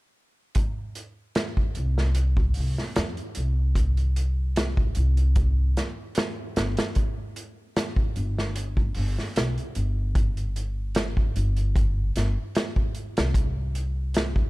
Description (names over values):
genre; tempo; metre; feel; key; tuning
trip hop; 75 BPM; 4/4; straight; unclear; A4 = 442 Hz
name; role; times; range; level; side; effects
vintage drum kit; drums; 0.5-14.5 s; hi-hat, kick drum, snare drum; -26 LUFS; equal; none
upright bass; bass; 1.8-14.5 s; G1 to F2; -24 LUFS; equal; tube saturation
room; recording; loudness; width
little or no reverb; dark, warm production; -23 LUFS; side -20 dB against mid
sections
0.6-14.5 A section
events
none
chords
none